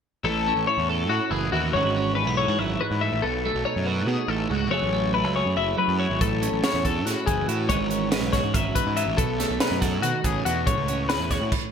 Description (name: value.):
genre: math rock and midwest emo.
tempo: 282 BPM (eighths).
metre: 7/8.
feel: straight.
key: A lydian.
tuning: A4 = 440 Hz.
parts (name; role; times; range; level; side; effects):
twelve-string electric guitar; arpeggios; 0.2-11.5 s; F#4 to E5; -26 LUFS; left 8 dB; lush chorus, ping-pong delay.
fuzz picked electric bass; bass; 0.2-11.5 s; F#1 to B2; -28 LUFS; right 1 dB; overdrive.
twelve-string electric guitar; accompaniment; 0.3-11.7 s; F#2 to A4; -27 LUFS; right 7 dB; wide subtle chorus.
crisp fusion drum kit; drums; 6.2-11.6 s; crash cymbal, hi-hat, kick drum, snare drum; -26 LUFS; right 2 dB; gated reverb.
room: light reverb, small room ambience.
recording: bright 1980s-style digital production.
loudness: -21 LUFS.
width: side -7 dB against mid.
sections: 0.3-11.7 A section.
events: none.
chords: 0.3 A6; 1.7 Emaj13/G#; 3.2 B7; 4.7 F#m9; 6.2 A6; 7.7 Emaj13/G#; 9.2 B7; 10.7 A69.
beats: | 0.25 0.47 0.68 0.89 1.10 1.32 1.53 | 1.74 1.95 2.17 2.38 2.59 2.81 3.02 | 3.23 3.44 3.66 3.87 4.08 4.29 4.51 | 4.72 4.93 5.14 5.36 5.57 5.78 5.99 | 6.21 6.42 6.63 6.84 7.05 7.27 7.48 | 7.69 7.91 8.12 8.33 8.54 8.75 8.97 | 9.18 9.39 9.61 9.82 10.03 10.24 10.46 | 10.67 10.88 11.09 11.31 11.52.